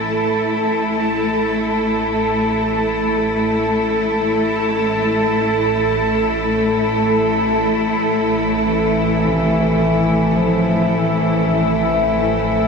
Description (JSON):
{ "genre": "dark ambient drone", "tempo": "free time", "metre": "none", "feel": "none", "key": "A minor", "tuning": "A4 = 440 Hz", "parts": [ { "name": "bright symphonic cello section", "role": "sustained chords", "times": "0.0-12.7 s", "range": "A3 to A4", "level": "-17 LUFS", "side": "equal", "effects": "none" }, { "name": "bowed-like drone", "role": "drone", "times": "0.0-12.7 s", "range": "A1 to A2", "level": "-25 LUFS", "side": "left 1 dB", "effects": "built-in reverb" }, { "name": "bubbling stepped-filter texture", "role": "texture", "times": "0.0-12.7 s", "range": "E5 to A5", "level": "-23 LUFS", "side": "left 2 dB", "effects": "chorus, built-in reverb" }, { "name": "mellow bass clarinet", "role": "melody", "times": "8.6-12.1 s", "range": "E3 to F3", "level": "-20 LUFS", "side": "equal", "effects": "ping-pong delay" }, { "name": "carillon bells", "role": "arpeggios", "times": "9.3-12.7 s", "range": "C3", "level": "-31 LUFS", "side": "right 3 dB", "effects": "none" } ], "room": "wet huge ambient reverb, RT60 8.4 s", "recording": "none", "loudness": "-15 LUFS", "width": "side -5 dB against mid", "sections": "0.0-12.7 A section", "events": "fade-in on synth drone 0.0-12.7", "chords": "0.0 A5" }